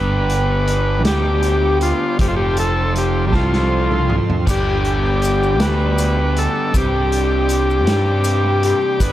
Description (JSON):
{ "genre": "psychedelic rock", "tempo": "53 BPM (dotted quarters)", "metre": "6/8", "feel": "straight", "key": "G mixolydian", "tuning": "A4 = 439 Hz", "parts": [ { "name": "overdriven combo organ", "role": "melody", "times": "0.0-9.1 s", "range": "F4 to B4", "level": "-20 LUFS", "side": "left 2 dB", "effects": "analog delay" }, { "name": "combo organ", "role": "sustained chords", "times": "0.0-9.1 s", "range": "A4 to D6", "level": "-31 LUFS", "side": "right 5 dB", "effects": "none" }, { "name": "raw garage guitar", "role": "riff", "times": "0.0-9.1 s", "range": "G2 to A4", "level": "-22 LUFS", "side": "right 1 dB", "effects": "overdrive, flanger" }, { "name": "fuzz fingered electric bass", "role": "bass", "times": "0.0-9.1 s", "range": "F1 to G2", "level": "-19 LUFS", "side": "equal", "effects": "overdrive" }, { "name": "vintage drum kit", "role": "drums", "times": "0.3-9.1 s", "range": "crash cymbal, hi-hat, kick drum, snare drum, toms", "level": "-22 LUFS", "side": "equal", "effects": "none" }, { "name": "maracas", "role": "percussion", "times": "4.5-9.1 s", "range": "none", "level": "-32 LUFS", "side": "left 6 dB", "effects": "none" } ], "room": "studio ambience", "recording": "echo-heavy mix", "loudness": "-15 LUFS", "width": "side -13 dB against mid", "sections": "0.0-9.1 A section", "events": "drum fill 3.3-4.5", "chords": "0.0 G; 2.2 F; 4.5 G; 6.7 Csus2", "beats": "1.07 | 2.20 3.34 | 4.47 5.61 | 6.74 7.88 | 9.01" }